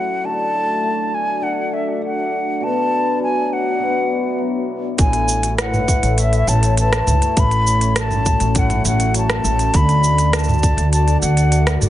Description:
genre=folktronica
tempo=101 BPM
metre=4/4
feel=straight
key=A major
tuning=A4 = 443 Hz
part: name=mellow silver concert flute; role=melody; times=0.0-11.8 s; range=E5 to B5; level=-20 LUFS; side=equal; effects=vintage 12-bit sampler grit, digital delay
part: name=warbly tape-like pad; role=sustained chords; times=0.0-11.9 s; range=A3 to D5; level=-26 LUFS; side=left 2 dB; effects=chorus, built-in reverb, phaser
part: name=cimbalom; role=arpeggios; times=0.0-11.9 s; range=A2 to G#4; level=-24 LUFS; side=left 3 dB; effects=digital delay
part: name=upright bass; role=bass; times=5.0-11.9 s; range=A1 to F#2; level=-17 LUFS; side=equal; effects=none
part: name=electronic kick drum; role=drums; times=5.0-10.8 s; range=none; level=-16 LUFS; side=equal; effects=none
part: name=organic electronic drum kit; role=drums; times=5.0-11.9 s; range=hi-hat, rim click, shaker, toms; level=-22 LUFS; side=right 1 dB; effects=none
room=light reverb, digital ambience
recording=nothing above 10.4 kHz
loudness=-15 LUFS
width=side -13 dB against mid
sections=0.0-5.0 A section; 5.0-11.9 B section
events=filter sweep on hammered dulcimer 0.0-5.0; filter sweep on ambient pad 0.0-5.0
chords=0.2 D; 2.6 Bm; 5.0 Amaj7; 7.4 F#m/A; 9.7 D

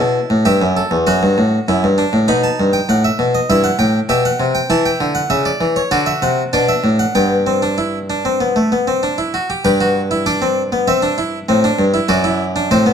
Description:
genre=classical, baroque-style 3-part fugue for harpsichord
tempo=98 BPM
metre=4/4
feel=straight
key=G major from 4.7 s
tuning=A4 = 440 Hz
part: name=harpsichord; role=solo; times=0.0-12.9 s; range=E2 to B5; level=-13 LUFS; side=equal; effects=none
room=wet large studio reverb, RT60 1.2 s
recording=dark, warm production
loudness=-13 LUFS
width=side -7 dB against mid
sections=0.0-9.7 A section; 9.7-12.9 B section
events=none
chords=0.0 A7(no3); 1.1 D/F#; 2.3 B7; 3.5 Em/G; 4.7 A7 (rootless); 5.9 D7; 7.2 G; 10.9 C/G; 12.1 D7/F#

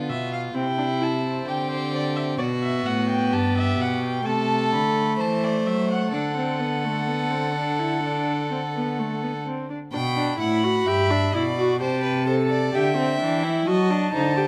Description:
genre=classical, baroque-style fugue for string quartet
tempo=64 BPM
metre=4/4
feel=straight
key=G major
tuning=A4 = 440 Hz
part: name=rich violin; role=second line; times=0.0-14.5 s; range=E4 to G5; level=-30 LUFS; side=equal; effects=none
part: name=warm viola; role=accompaniment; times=0.0-14.5 s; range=A3 to A4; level=-28 LUFS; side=equal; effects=none
part: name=rich cello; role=bass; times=0.0-14.5 s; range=G2 to F#3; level=-29 LUFS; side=equal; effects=none
part: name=dark violin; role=melody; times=0.1-14.5 s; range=C5 to B5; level=-32 LUFS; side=equal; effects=none
room=moderate recital hall reverb, RT60 1.4 s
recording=close, detailed microphones, faint mains hum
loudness=-24 LUFS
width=mono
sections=0.0-9.9 A section; 9.9-14.5 B section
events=none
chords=0.0 G7/B (rootless); 0.6 C; 2.4 G; 4.3 Am/C; 6.1 D; 9.9 G; 11.8 Am7/C; 13.7 F#dim7

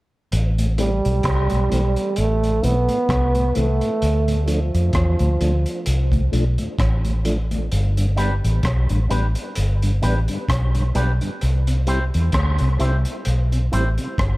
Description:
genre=dub reggae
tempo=65 BPM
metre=4/4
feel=swing 56% on 16ths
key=A minor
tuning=A4 = 440 Hz
part: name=vintage muted fingered electric bass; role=bass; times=0.3-14.4 s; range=G1 to F2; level=-19 LUFS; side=equal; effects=none
part: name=crunchy breakbeat drum kit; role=drums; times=0.3-14.4 s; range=hi-hat, kick drum, rim click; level=-27 LUFS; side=equal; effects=none
part: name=mellow tonewheel organ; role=accompaniment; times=0.6-14.1 s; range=D2 to E4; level=-28 LUFS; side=left 1 dB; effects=chorus vibrato, slow rotary speaker, dub echo
part: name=dark trombone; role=melody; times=0.8-6.3 s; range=F3 to B3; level=-22 LUFS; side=right 2 dB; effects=dub echo
part: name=electric guitar with an envelope filter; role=accompaniment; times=8.2-13.9 s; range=D4 to C5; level=-29 LUFS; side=equal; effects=dub echo
room=light reverb, small room ambience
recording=echo-heavy mix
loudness=-17 LUFS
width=side -20 dB against mid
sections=0.3-14.4 A section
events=none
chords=0.3 Am; 4.0 Dm; 7.7 G; 11.4 C

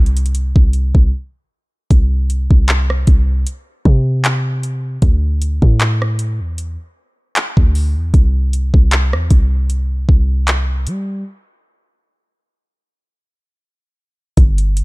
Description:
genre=contemporary R&B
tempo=77 BPM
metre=4/4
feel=swing 54% on 16ths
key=unclear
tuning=A4 = 439 Hz
part: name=warm 808-style bass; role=bass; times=0.0-14.8 s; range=G1 to G3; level=-15 LUFS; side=equal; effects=none
part: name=smooth R&B drum kit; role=drums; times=0.1-14.8 s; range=handclaps, hi-hat, kick drum, rim click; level=-13 LUFS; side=equal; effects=none
room=digital ambience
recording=dark, warm production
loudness=-13 LUFS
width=side -24 dB against mid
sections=0.0-1.9 A section; 1.9-14.4 B section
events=break 1.1-1.9, 11.3-14.4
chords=none

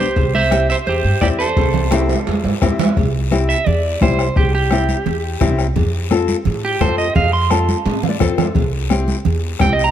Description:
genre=latin, cumbia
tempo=172 BPM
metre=4/4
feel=straight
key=C major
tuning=A4 = 440 Hz
part: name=clean electric guitar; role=melody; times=0.0-9.9 s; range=G4 to C6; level=-19 LUFS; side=right 3 dB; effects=spring reverb, slapback echo
part: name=nylon-string guitar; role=accompaniment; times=0.0-9.9 s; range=C4 to F5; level=-22 LUFS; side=left 6 dB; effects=none
part: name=upright bass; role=bass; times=0.0-9.9 s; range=C2 to A2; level=-20 LUFS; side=right 1 dB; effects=none
part: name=congas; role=percussion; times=0.0-9.8 s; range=none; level=-22 LUFS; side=right 4 dB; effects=none
part: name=bombo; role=percussion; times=0.2-9.8 s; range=none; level=-20 LUFS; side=left 3 dB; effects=none
part: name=cowbell and timbales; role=percussion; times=0.2-9.8 s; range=none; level=-24 LUFS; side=right 3 dB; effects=none
part: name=guiro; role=percussion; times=0.2-9.9 s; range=none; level=-32 LUFS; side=left 7 dB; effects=none
room=light reverb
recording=none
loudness=-14 LUFS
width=side -10 dB against mid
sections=0.0-3.0 A section; 3.0-9.9 B section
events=drum fill 1.6-3.0, 7.5-8.6; clean electric guitar solo 3.0-9.9; nylon-string guitar fill 7.9-8.6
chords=0.2 C; 5.8 F; 8.6 C

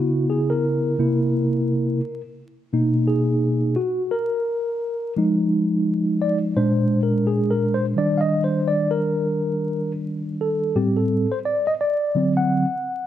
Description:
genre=hip hop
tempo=86 BPM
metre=4/4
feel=swing 59% on 16ths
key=unclear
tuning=A4 = 439 Hz
part: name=mellow tine electric piano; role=solo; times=0.0-13.1 s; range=A2 to F#5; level=-19 LUFS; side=equal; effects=medium stereo tremolo
room=moderate echo chamber reverb, RT60 1.8 s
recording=dark, warm production, vinyl crackle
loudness=-19 LUFS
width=side -11 dB against mid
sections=0.0-13.1 A section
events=tine electric piano solo 0.0-13.1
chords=0.0 C#m7; 1.0 C7; 2.4 Bmaj7; 5.2 Fm7; 6.6 Bb7; 8.0 Ebmaj7; 10.8 Am7; 12.2 D7

